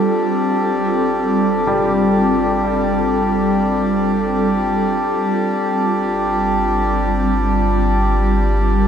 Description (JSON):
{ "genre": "ambient", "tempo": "free time", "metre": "none", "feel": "none", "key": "unclear", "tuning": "A4 = 440 Hz", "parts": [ { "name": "ethereal airy pad", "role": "sustained chords", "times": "0.0-8.9 s", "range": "G3 to Bb4", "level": "-18 LUFS", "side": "equal", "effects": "ensemble chorus, built-in reverb" }, { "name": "deep rumbling drone", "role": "bass", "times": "0.9-8.9 s", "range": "G1", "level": "-23 LUFS", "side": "equal", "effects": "built-in reverb" }, { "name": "pedal harmonium", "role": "drone", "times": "0.0-8.9 s", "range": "G3 to D4", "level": "-19 LUFS", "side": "equal", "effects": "none" }, { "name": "felt-muted upright piano", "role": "arpeggios", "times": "1.7-5.5 s", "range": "G3", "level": "-24 LUFS", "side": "equal", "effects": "tape echo" } ], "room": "wet huge ambient reverb, RT60 8.0 s", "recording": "cassette tape", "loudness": "-15 LUFS", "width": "side -8 dB against mid", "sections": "0.0-8.9 A section", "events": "fade-in on synth drone 0.0-8.9; fade-out on felt piano 0.0-8.9", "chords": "0.0 Gsus2; 5.5 C5/G" }